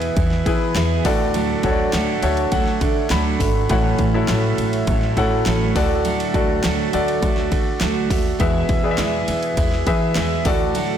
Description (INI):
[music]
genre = piano-driven pop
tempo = 102 BPM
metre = 4/4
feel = straight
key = unclear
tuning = A4 = 441 Hz
[part]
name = warm grand piano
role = accompaniment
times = 0.0-11.0 s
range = A2 to B5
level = -22 LUFS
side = left 5 dB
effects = none
[part]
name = picked steel-string acoustic guitar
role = riff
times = 0.0-11.0 s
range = A2 to A4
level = -22 LUFS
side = right 9 dB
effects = none
[part]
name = upright bass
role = bass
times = 0.0-10.9 s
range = G#1 to E3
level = -24 LUFS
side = equal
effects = none
[part]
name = pop drum kit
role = drums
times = 0.0-10.9 s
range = hi-hat, kick drum, ride cymbal, snare drum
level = -23 LUFS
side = equal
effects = none
[part]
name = group handclap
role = percussion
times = 0.8-10.3 s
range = none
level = -36 LUFS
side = left 4 dB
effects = none
[sound]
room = light reverb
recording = blown-out, overdriven recording, overdrive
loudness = -17 LUFS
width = side -9 dB against mid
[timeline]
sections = 0.0-11.0 A section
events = grand piano fill 1.9-3.7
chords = 0.0 E; 1.1 D; 3.7 A6; 5.8 D; 8.4 E; 10.5 D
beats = 0.17 0.76 | 1.35 1.94 2.52 3.11 | 3.70 4.29 4.88 5.46 | 6.05 6.64 7.23 7.82 | 8.41 8.99 9.58 10.17 | 10.76